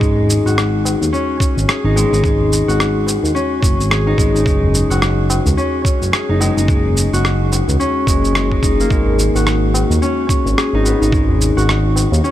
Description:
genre	organic downtempo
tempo	108 BPM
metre	4/4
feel	swing 60% on 16ths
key	unclear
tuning	A4 = 440 Hz
part	concert harp	arpeggios	0.0-12.3 s	G#3 to G#4	-17 LUFS	left 2 dB	ping-pong delay
part	smooth synth bass	bass	0.0-12.2 s	F#1 to D#2	-16 LUFS	right 1 dB	sidechain pumping
part	electronic kick drum	drums	0.0-11.3 s	none	-17 LUFS	right 1 dB	small room ambience
part	electronic shaker and rim click	drums	0.0-12.3 s	none	-22 LUFS	equal	small room ambience
part	tabla	percussion	0.2-12.2 s	none	-26 LUFS	equal	none
room	little or no reverb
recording	none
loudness	-13 LUFS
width	side -12 dB against mid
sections	0.0-12.3 A section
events	none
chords	0.0 F#sus2; 8.9 G#m7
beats	| 0.01 0.57 1.13 1.68 | 2.24 2.79 3.35 3.90 | 4.46 5.01 5.57 6.13 | 6.68 7.24 7.79 8.35 | 8.90 9.46 10.02 10.57 | 11.13 11.68 12.24

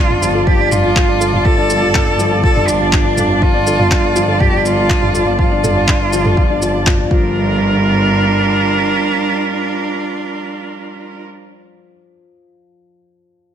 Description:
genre	piano and strings electronica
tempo	122 BPM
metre	4/4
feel	straight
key	G minor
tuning	A4 = 443 Hz
part	rich cello	melody	0.0-11.2 s	D4 to A4	-19 LUFS	right 2 dB	none
part	rich string quartet	sustained chords	0.0-11.2 s	G3 to A5	-19 LUFS	right 2 dB	sidechain pumping
part	soft round pluck	arpeggios	0.0-7.6 s	F4 to F5	-27 LUFS	right 3 dB	none
part	dark upright piano	riff	0.0-13.5 s	F3 to F4	-20 LUFS	left 4 dB	digital delay
part	warm studio double bass section	bass	0.0-8.8 s	G1	-19 LUFS	right 1 dB	tube saturation, sidechain pumping
part	deep house drum kit	drums	0.1-7.0 s	handclaps, shaker, toms	-19 LUFS	equal	none
part	electronic kick drum	drums	0.5-7.2 s	none	-15 LUFS	equal	none
room	light reverb, small room ambience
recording	none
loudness	-12 LUFS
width	side -9 dB against mid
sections	0.0-7.4 A section; 7.4-11.3 B section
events	drop 0.0-7.4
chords	0.0 Dm/G; 7.1 Gm7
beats	0.47 0.96 | 1.46 1.95 2.44 2.93 | 3.42 3.91 4.41 4.90 | 5.39 5.88 6.37 6.87 | 7.36 7.85 8.34 8.83 | 9.32 9.81 10.31 10.80

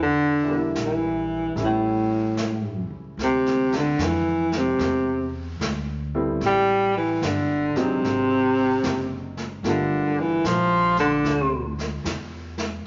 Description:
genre	jazz ballad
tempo	74 BPM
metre	4/4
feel	swing 66% on 8ths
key	D minor from 3.2 s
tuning	A4 = 440 Hz
part	mellow baritone saxophone	melody	0.0-11.7 s	A2 to G3	-24 LUFS	equal	none
part	upright bass	bass	0.0-12.8 s	F#1 to F2	-34 LUFS	equal	none
part	clear upright piano	accompaniment	0.4-12.9 s	E3 to F4	-33 LUFS	equal	none
part	jazz brush drum kit	drums	0.8-12.9 s	brushed snare drum, hi-hat, snare drum	-35 LUFS	equal	none
room	wet large studio reverb, RT60 1.1 s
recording	nothing above 7.5 kHz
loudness	-23 LUFS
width	mono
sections	0.0-3.2 A section; 3.2-12.9 B section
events	none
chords	0.0 Em7b5; 1.6 A7; 3.2 Dm9; 6.4 Am9; 8.0 G#7#11; 9.6 Gm9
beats	0.76 1.57 2.38 | 3.18 3.99 4.80 5.60 | 6.41 7.21 8.02 8.82 | 9.63 10.43 11.24 12.04 | 12.85

